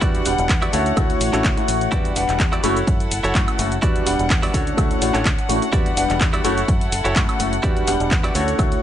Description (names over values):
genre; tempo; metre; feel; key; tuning
filtered disco house; 126 BPM; 4/4; swing 54% on 16ths; E dorian; A4 = 440 Hz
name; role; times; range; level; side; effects
warm grand piano; accompaniment; 0.0-8.8 s; G3 to F#5; -22 LUFS; left 1 dB; phaser, sidechain pumping
warm chamber violin section; sustained chords; 0.0-8.8 s; G3 to F#5; -28 LUFS; left 2 dB; sidechain pumping
direct-recorded clean electric guitar; riff; 0.0-8.8 s; D4 to D5; -26 LUFS; right 2 dB; sidechain pumping
fingered electric bass; bass; 0.0-8.8 s; E1 to F#2; -25 LUFS; equal; sidechain pumping
electronic kick drum; drums; 0.0-8.7 s; none; -21 LUFS; equal; none
punchy analog drum machine; drums; 0.0-8.8 s; cabasa, handclaps, hi-hat, woodblock; -25 LUFS; equal; sidechain pumping on hats, sidechain pumping on perc
room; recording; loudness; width
little or no reverb; nothing above 10.4 kHz; -16 LUFS; side -11 dB against mid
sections
0.0-8.8 A section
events
none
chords
0.0 Em9; 0.7 Dmaj7; 1.9 Em9; 2.6 F#m7; 3.8 Em9; 4.5 Dmaj7; 5.7 Em9; 6.4 F#m7; 7.6 Em9